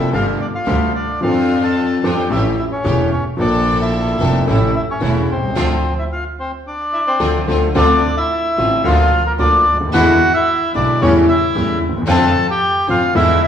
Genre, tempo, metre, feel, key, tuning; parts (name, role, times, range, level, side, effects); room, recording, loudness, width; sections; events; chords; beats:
tango; 111 BPM; 4/4; rubato; D minor; A4 = 445 Hz
bandoneon; melody; 0.0-13.5 s; Bb3 to A5; -17 LUFS; equal
warm concert grand piano; accompaniment; 0.0-13.4 s; E1 to A4; -17 LUFS; left 2 dB
clear studio string section; stabs; 0.0-13.4 s; G#3 to A4; -26 LUFS; right 1 dB
clear double bass; bass; 0.0-13.4 s; E1 to F2; -20 LUFS; right 2 dB
wet recital hall reverb, RT60 1.2 s; recorded in a church or concert hall; -13 LUFS; side -8 dB against mid
0.0-7.8 A section; 7.8-13.5 B section
band accent 5.6-7.8
0.1 Gsus2; 1.2 Dm7/F; 2.3 A7; 3.4 Bbmaj7; 4.5 A; 5.6 Dm7; 8.9 Bb/D; 9.9 E7; 11.0 A7/E; 12.1 Dm7/F
0.13 0.68 | 1.22 1.76 2.31 2.85 | 3.39 3.93 4.47 5.01 | 5.56 6.10 6.65 7.20 | 7.76 8.31 8.85 9.39 | 9.94 10.47 11.01 11.55 | 12.08 12.62 13.15